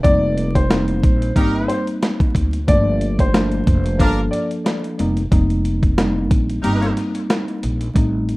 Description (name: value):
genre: hip hop, boom-bap hip-hop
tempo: 91 BPM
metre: 4/4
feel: swing 55% on 16ths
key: unclear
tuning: A4 = 439 Hz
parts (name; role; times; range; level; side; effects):
- warm upright piano; melody; 0.0-4.5 s; C5 to D5; -22 LUFS; left 1 dB; ping-pong delay
- tine electric piano; accompaniment; 0.0-8.4 s; F3 to A4; -21 LUFS; equal; medium stereo tremolo, cassette tape
- upright bass; bass; 0.0-8.4 s; F1 to D2; -21 LUFS; equal; none
- dusty soul sampler-style drum kit; drums; 0.0-8.4 s; hi-hat, kick drum, snare drum; -18 LUFS; equal; none
- clear horn section; stabs; 1.4-6.9 s; D4 to Bb4; -26 LUFS; right 1 dB; ping-pong delay
room: light reverb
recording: rough home demo mix, vinyl crackle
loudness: -16 LUFS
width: side -21 dB against mid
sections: 0.0-8.0 A section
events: break 6.6-8.0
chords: 0.0 F9sus4; 2.7 Gm9; 5.0 F9sus4